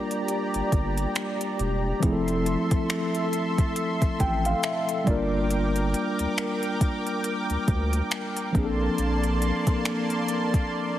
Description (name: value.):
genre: contemporary R&B.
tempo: 69 BPM.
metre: 4/4.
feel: swing 58% on 16ths.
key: G dorian.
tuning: A4 = 440 Hz.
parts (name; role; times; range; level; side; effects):
mellow tine electric piano; accompaniment; 0.0-11.0 s; F3 to G5; -27 LUFS; left 1 dB; medium stereo tremolo.
lush unison pad; sustained chords; 0.0-11.0 s; Bb3 to D6; -30 LUFS; equal; chorus.
smooth R&B drum kit; drums; 0.1-10.7 s; finger snaps, hi-hat, kick drum; -27 LUFS; equal; overdrive.
saturated sub bass; bass; 0.5-9.7 s; E1 to D2; -28 LUFS; equal; none.
room: light reverb.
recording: heavily compressed radio sound, lossy compression artefacts.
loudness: -23 LUFS.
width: side -12 dB against mid.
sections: 0.0-11.0 A section.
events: tine electric piano fill 3.8-5.5; break 10.7.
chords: 0.0 Gm7; 2.0 Fmaj7; 5.1 Gm7; 8.5 Bbmaj9.